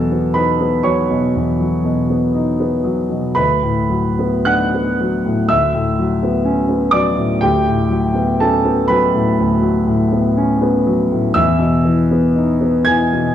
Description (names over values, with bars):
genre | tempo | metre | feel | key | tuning
classical, impressionist solo piano | 61 BPM | 4/4 | rubato | unclear | A4 = 440 Hz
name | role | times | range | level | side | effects
clear concert grand piano | solo | 0.0-13.3 s | D2 to G#6 | -14 LUFS | equal | none
room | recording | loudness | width
wet recital hall reverb, RT60 1.4 s | dark, warm production | -14 LUFS | side -10 dB against mid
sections
0.0-13.3 A section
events
none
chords
0.0 B9/E; 3.4 D6; 5.5 Bm11/D; 7.4 A13/D; 11.4 Emaj7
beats
0.37 1.38 2.36 | 3.36 4.48 5.50 6.46 | 7.43 8.40 9.38 10.38 | 11.38 12.36